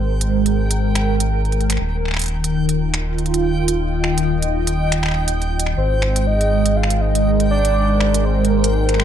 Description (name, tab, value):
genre	IDM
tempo	121 BPM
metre	4/4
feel	swing 56% on 16ths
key	Ab major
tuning	A4 = 436 Hz
part	phased analog pad	sustained chords	0.0-9.0 s	Eb3 to G5	-20 LUFS	right 1 dB	phaser, chorus, vintage 12-bit sampler grit
part	round analog bass	bass	0.0-9.0 s	Eb1 to Ab1	-20 LUFS	equal	none
part	backwards swelling texture	texture	0.0-9.0 s	G5	-29 LUFS	right 1 dB	built-in reverb
part	organic electronic drum kit	drums	0.2-9.0 s	finger snaps, hi-hat	-24 LUFS	right 1 dB	none
part	warbly nostalgic lead	melody	5.8-9.0 s	Bb4 to F5	-21 LUFS	right 1 dB	chorus, dub echo
room	light reverb, digital ambience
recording	dark, warm production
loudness	-16 LUFS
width	side -9 dB against mid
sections	0.0-9.0 A section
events	none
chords	0.0 Abmaj9; 1.8 Ebadd9; 5.8 Abmaj9